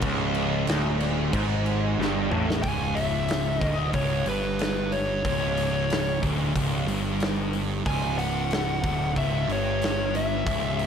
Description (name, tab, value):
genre	stoner and doom metal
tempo	92 BPM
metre	4/4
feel	straight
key	unclear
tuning	A4 = 440 Hz
part	cranked stack guitar	riff	0.0-2.6 s	C#2 to A2	-28 LUFS	equal	overdrive
part	thick fuzz guitar	riff	0.0-10.9 s	C#2 to A2	-30 LUFS	left 8 dB	distortion
part	thick fuzz guitar	riff	0.0-10.9 s	C#2 to A2	-30 LUFS	right 10 dB	distortion
part	fuzz picked electric bass	bass	0.0-10.9 s	C#1 to A1	-31 LUFS	equal	overdrive
part	big rock drum kit	drums	0.0-10.9 s	crash cymbal, hi-hat, kick drum, snare drum, toms	-30 LUFS	equal	none
part	fuzz lead guitar	melody	2.6-10.9 s	B4 to G#5	-29 LUFS	left 2 dB	distortion, tape echo
room	light reverb, studio reverb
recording	none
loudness	-23 LUFS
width	side -7 dB against mid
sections	0.0-2.6 A section; 2.6-10.9 B section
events	drum fill 2.0-2.6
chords	0.0 C#5; 2.6 C#m